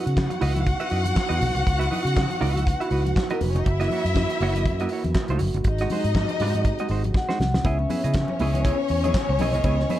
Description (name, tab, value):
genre	disco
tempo	120 BPM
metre	4/4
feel	swing 56% on 16ths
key	C# dorian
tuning	A4 = 440 Hz
part	warm studio violin section	second line	0.0-10.0 s	A#3 to F#5	-28 LUFS	left 2 dB	none
part	semi-hollow electric guitar	accompaniment	0.0-10.0 s	G#3 to E5	-30 LUFS	right 5 dB	none
part	mellow French horn section	sustained chords	0.0-10.0 s	B#2 to F#4	-31 LUFS	right 2 dB	none
part	fingered electric bass	bass	0.1-9.8 s	E#1 to C#3	-24 LUFS	equal	none
part	warm soul drum kit	drums	0.1-10.0 s	handclaps, hi-hat, kick drum, snare drum	-26 LUFS	equal	none
part	congas	percussion	0.2-10.0 s	none	-32 LUFS	left 3 dB	none
part	vibraphone with soft mallets	melody	7.2-10.0 s	C#5 to F#5	-28 LUFS	left 2 dB	none
room	little or no reverb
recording	dark, warm production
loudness	-20 LUFS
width	side -13 dB against mid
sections	0.0-7.6 A section; 7.6-10.0 B section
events	drum fill 7.1-7.6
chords	0.0 C#m11; 3.7 F#7; 5.7 G#7; 7.6 C#m9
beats	0.17 0.67 1.17 | 1.67 2.16 2.66 3.16 | 3.66 4.16 4.66 5.15 | 5.65 6.15 6.65 7.15 | 7.65 8.14 8.64 9.14 | 9.64